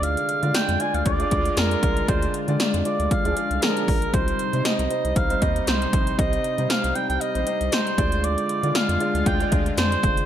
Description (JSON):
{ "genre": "1980s-style pop", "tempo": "117 BPM", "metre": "4/4", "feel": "swing 55% on 16ths", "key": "unclear", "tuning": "A4 = 440 Hz", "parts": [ { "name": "mellow oboe", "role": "melody", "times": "0.0-10.3 s", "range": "Bb4 to Ab5", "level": "-26 LUFS", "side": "right 2 dB", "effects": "none" }, { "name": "warm concert grand piano", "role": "accompaniment", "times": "0.0-10.3 s", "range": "G3 to D5", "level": "-28 LUFS", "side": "equal", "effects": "none" }, { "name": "sweeping resonant pad", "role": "sustained chords", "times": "0.0-10.3 s", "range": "C3 to F4", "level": "-31 LUFS", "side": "left 3 dB", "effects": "chorus" }, { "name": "round analog bass", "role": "bass", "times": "0.0-10.2 s", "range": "F1 to D3", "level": "-26 LUFS", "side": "equal", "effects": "none" }, { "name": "80s electronic pad drums", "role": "drums", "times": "0.0-10.3 s", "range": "hi-hat, kick drum, snare drum, tambourine", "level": "-24 LUFS", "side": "equal", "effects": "overdrive" }, { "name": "mellow synth brass", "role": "stabs", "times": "3.2-3.8 s", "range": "F3 to Ab4", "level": "-32 LUFS", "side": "right 1 dB", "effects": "chorus, phaser, ping-pong delay" } ], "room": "moderate lush hall reverb, RT60 1.8 s, digital ambience", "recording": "bright 1980s-style digital production", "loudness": "-20 LUFS", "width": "side -10 dB against mid", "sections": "0.0-10.3 A section", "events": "band accent 2.1-4.1", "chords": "0.0 Ddim; 4.1 Cm; 8.0 Ddim" }